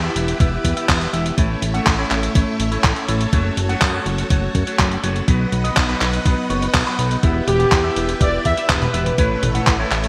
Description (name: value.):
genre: italo disco.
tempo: 123 BPM.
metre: 4/4.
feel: straight.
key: E dorian.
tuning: A4 = 442 Hz.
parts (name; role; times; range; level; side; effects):
string machine, full ensemble; sustained chords; 0.0-10.1 s; A3 to F#5; -29 LUFS; equal; ensemble chorus.
electric guitar with an envelope filter; stabs; 0.0-10.1 s; F#3 to G5; -27 LUFS; equal; lush chorus.
fat analog bass; bass; 0.0-10.1 s; E1 to F#2; -24 LUFS; equal; none.
dusty soul sampler-style drum kit; drums; 0.2-10.1 s; handclaps, hi-hat, toms; -24 LUFS; equal; small room ambience.
electronic kick drum; drums; 0.4-9.8 s; none; -20 LUFS; equal; small room ambience.
analog synth brass; melody; 7.5-9.9 s; G4 to E5; -23 LUFS; equal; chorus, digital delay.
room: moderate plate reverb, RT60 1.7 s.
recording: bright 1980s-style digital production, vinyl crackle.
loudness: -18 LUFS.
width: mono.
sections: 0.0-10.1 A section.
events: none.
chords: 0.0 Em; 1.4 A; 3.3 F#m; 5.3 B; 7.2 Em; 9.2 A.